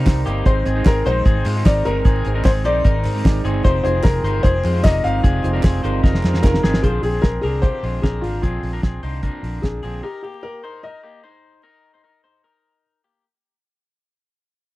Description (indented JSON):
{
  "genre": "jangly indie pop",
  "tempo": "150 BPM",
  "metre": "4/4",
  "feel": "straight",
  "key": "unclear",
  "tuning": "A4 = 442 Hz",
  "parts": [
    { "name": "clear upright piano", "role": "melody", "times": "0.0-12.8 s", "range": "F4 to F5", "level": "-24 LUFS", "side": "left 2 dB", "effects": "none" },
    { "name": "clean electric guitar", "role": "accompaniment", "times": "0.0-10.0 s", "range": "F2 to Eb4", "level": "-29 LUFS", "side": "right 5 dB", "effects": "none" },
    { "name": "soft electric-piano-like synth keys", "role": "accompaniment", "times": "0.0-6.9 s", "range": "C4 to Bb5", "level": "-27 LUFS", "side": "right 3 dB", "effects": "chorus, tube saturation" },
    { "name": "electric guitar through a small old amp", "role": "arpeggios", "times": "0.0-13.2 s", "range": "Ab3 to C5", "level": "-30 LUFS", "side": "left 5 dB", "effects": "none" },
    { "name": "vintage muted fingered electric bass", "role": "bass", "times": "0.0-10.0 s", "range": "F1 to Ab2", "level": "-21 LUFS", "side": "equal", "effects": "none" },
    { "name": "cloth-damped thuddy drum kit", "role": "drums", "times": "0.1-9.9 s", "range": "hi-hat, kick drum, snare drum", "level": "-16 LUFS", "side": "equal", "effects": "none" },
    { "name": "group handclap", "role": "percussion", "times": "0.1-6.5 s", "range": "none", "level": "-39 LUFS", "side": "right 5 dB", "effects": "none" }
  ],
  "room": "little or no reverb",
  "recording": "dry, close 1970s-style studio recording, vinyl crackle",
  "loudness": "-16 LUFS",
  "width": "side -18 dB against mid",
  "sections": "0.0-6.8 A section; 6.8-13.2 B section",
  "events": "synth keys fill 5.6-6.8; drum fill 6.0-6.8; fade-out 6.8-13.2",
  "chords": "0.5 Ab; 3.6 Fm7; 6.8 Bbadd9; 10.0 Cm7"
}